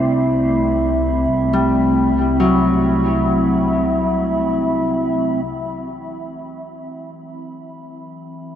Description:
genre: ambient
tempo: free time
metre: none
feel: none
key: C lydian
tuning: A4 = 440 Hz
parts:
  - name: warbly tape-like pad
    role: sustained chords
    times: 0.0-8.6 s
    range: E3 to B5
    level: -18 LUFS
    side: right 1 dB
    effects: chorus, built-in reverb
  - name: Celtic harp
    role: arpeggios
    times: 0.0-5.5 s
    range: F#3 to C5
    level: -22 LUFS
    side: left 2 dB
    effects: diffuse ambient delay
  - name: warm studio double bass section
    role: bass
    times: 0.0-5.4 s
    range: C2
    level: -24 LUFS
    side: equal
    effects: none
room: wet huge ambient reverb, RT60 8.7 s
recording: none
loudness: -15 LUFS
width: side -9 dB against mid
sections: 0.0-5.5 A section; 5.5-8.6 B section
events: none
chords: 0.0 Amadd9/C; 5.5 Cmaj7

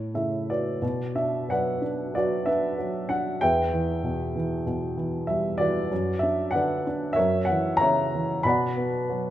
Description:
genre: classical, lyrical solo piano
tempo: 94 BPM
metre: 4/4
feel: rubato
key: B minor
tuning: A4 = 440 Hz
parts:
  - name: dark upright piano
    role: solo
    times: 0.0-9.3 s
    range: E2 to B5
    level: -23 LUFS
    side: equal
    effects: none
room: moderate recital hall reverb, RT60 1.6 s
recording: minimal, uncompressed stereo recording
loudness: -23 LUFS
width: side -13 dB against mid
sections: 0.8-9.3 A section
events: none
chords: 0.0 A; 0.8 Bm; 3.4 Em; 5.9 Bm/F#; 7.2 F#7; 8.5 Bm

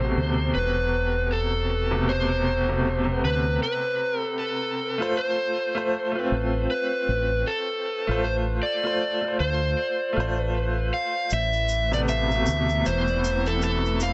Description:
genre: trip hop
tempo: 78 BPM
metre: 4/4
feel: swing 59% on 16ths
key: A minor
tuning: A4 = 444 Hz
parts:
  - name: overdriven slide guitar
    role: melody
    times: 0.0-14.1 s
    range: A4 to F5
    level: -28 LUFS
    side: equal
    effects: tape echo
  - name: clear upright piano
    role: accompaniment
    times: 0.0-14.1 s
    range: B2 to C5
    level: -30 LUFS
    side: equal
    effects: tremolo, tape echo
  - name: deep dub fingered electric bass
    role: bass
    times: 0.0-14.1 s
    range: E1 to D2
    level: -29 LUFS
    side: equal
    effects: none
  - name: dark studio string section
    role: sustained chords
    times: 11.3-14.1 s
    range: E3 to A3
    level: -35 LUFS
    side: equal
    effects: none
  - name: tube shaker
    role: percussion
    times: 11.3-14.1 s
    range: none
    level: -42 LUFS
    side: equal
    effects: none
room: light reverb, studio ambience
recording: echo-heavy mix, nothing above 8.0 kHz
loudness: -25 LUFS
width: mono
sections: 0.0-14.1 A section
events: none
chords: 0.0 Amadd9; 5.2 F/A; 11.3 Amadd9

